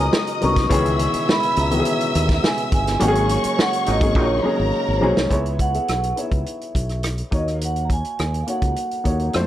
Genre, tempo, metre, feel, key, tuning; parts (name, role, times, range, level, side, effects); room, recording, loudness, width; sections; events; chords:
lush 1970s-style soul; 104 BPM; 4/4; straight; C# dorian; A4 = 440 Hz
vibraphone with medium hard mallets; melody; 0.0-9.3 s; B#4 to C#6; -24 LUFS; right 2 dB
warm studio string section; second line; 0.0-5.3 s; A#4 to E6; -26 LUFS; left 1 dB
dark baby grand piano; accompaniment; 0.0-9.5 s; D#3 to E5; -24 LUFS; left 2 dB
tonewheel organ; sustained chords; 0.0-5.3 s; B2 to C#4; -29 LUFS; equal; fast rotary speaker, chorus vibrato
fingered electric bass; bass; 0.0-9.5 s; G1 to F2; -22 LUFS; equal
vintage drum kit; drums; 0.1-9.5 s; hi-hat, kick drum, rim click, snare drum; -22 LUFS; equal
mellow horn section; stabs; 3.9-4.6 s; A#2 to D#4; -29 LUFS; right 2 dB; analog delay
light reverb, small room ambience; -18 LUFS; side -12 dB against mid
0.0-5.3 A section; 5.3-9.5 B section
band accent 3.0-5.3; drum fill 4.2-5.3
0.0 Bmaj9; 0.7 C#m9; 3.0 G#9sus4; 5.3 C#m7; 7.3 D#m7